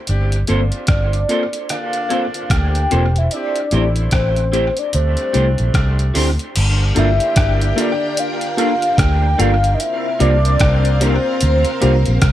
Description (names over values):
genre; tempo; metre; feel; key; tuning
lovers rock reggae; 74 BPM; 4/4; swing 60% on 16ths; G dorian; A4 = 443 Hz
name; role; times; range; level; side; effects
warm horn section; second line; 0.1-12.3 s; D3 to G4; -29 LUFS; equal; none
vintage muted fingered electric bass; bass; 0.1-12.3 s; E1 to D2; -16 LUFS; equal; none
detuned 8-bit digital drum machine; drums; 0.1-12.3 s; crash cymbal, hi-hat, kick drum, rim click; -20 LUFS; equal; gated reverb, dub echo
tine electric piano; accompaniment; 0.5-12.1 s; A3 to A4; -22 LUFS; left 4 dB; overdrive, fast stereo tremolo
electric guitar through a small old amp; stabs; 0.5-11.9 s; G3 to C5; -26 LUFS; right 4 dB; wide subtle chorus, dub echo
warm velvety synth lead; melody; 0.9-12.3 s; C5 to G5; -20 LUFS; equal; chorus, tremolo, tape echo
string machine, full ensemble; second line; 6.5-12.3 s; C4 to G5; -26 LUFS; equal; ensemble chorus
room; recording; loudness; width
digital ambience; none; -14 LUFS; side -12 dB against mid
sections
0.0-6.6 A section; 6.6-12.3 B section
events
none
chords
0.1 Gm11; 3.3 Am7; 4.9 D7sus4; 6.6 Gm7; 9.8 C7sus4